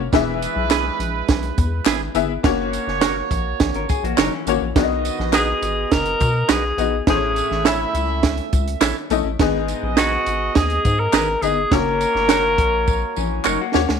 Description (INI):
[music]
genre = uptempo 1960s-style soul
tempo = 104 BPM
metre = 4/4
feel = straight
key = unclear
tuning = A4 = 440 Hz
[part]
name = rubbery square bass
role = bass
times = 0.0-14.0 s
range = E1 to B2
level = -25 LUFS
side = left 1 dB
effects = none
[part]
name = clear horn section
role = second line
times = 0.1-13.7 s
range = G#3 to E5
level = -28 LUFS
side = right 10 dB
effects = tape echo
[part]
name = bright upright piano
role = accompaniment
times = 0.1-13.9 s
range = G#2 to E5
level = -22 LUFS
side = left 14 dB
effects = none
[part]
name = compact cocktail drum kit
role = drums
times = 0.1-14.0 s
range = hi-hat, kick drum, snare drum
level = -20 LUFS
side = right 4 dB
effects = none
[part]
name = tambourine and handclaps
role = percussion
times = 0.1-13.9 s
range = none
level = -30 LUFS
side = left 4 dB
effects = none
[part]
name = direct-recorded clean electric guitar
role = stabs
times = 0.7-13.6 s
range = B3 to E5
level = -24 LUFS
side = right 11 dB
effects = none
[part]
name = vintage hollow-body jazz guitar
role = riff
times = 3.8-4.7, 13.2-14.0 s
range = E3 to A#4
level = -26 LUFS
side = left 14 dB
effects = none
[part]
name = breathy tenor saxophone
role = melody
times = 5.4-13.5 s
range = E4 to A#4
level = -20 LUFS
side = left 2 dB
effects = none
[sound]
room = light reverb, small room ambience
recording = 1960s-style stereo with parts hard left and right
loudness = -17 LUFS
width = side -6 dB against mid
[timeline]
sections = 0.0-14.0 A section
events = drum fill 12.9-14.0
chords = 0.1 E; 2.4 F#; 4.8 B; 7.1 A; 9.4 G#m; 11.7 F#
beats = | 0.13 0.71 1.28 1.86 | 2.44 3.02 3.60 4.18 | 4.76 5.34 5.92 6.50 | 7.08 7.66 8.23 8.81 | 9.39 9.97 10.55 11.13 | 11.71 12.29 12.88 13.46